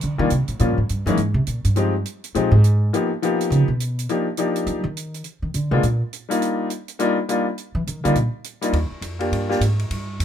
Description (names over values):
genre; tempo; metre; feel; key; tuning
jazz, small-group swing and bop; 206 BPM; 4/4; swing 63% on 8ths; Eb major; A4 = 443 Hz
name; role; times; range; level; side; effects
upright bass; bass; 0.0-10.2 s; Eb2 to F3; -20 LUFS; right 1 dB; none
open jazz drum kit; drums; 0.0-10.2 s; hi-hat, kick drum, ride cymbal, snare drum; -34 LUFS; right 4 dB; none
bright upright piano; accompaniment; 0.2-9.6 s; Eb3 to G4; -21 LUFS; left 3 dB; none
room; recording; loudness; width
little or no reverb; minimal, uncompressed stereo recording; -19 LUFS; side -9 dB against mid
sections
0.0-8.7 A section; 8.7-10.2 B section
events
upright bass solo 0.0-8.7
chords
0.0 Ebmaj7; 0.6 Gm7b5; 1.2 Gmadd11; 1.8 Fm9; 2.9 G7alt; 4.1 Ebmaj9; 5.2 Fm7; 5.8 Bb; 6.4 Ebmaj7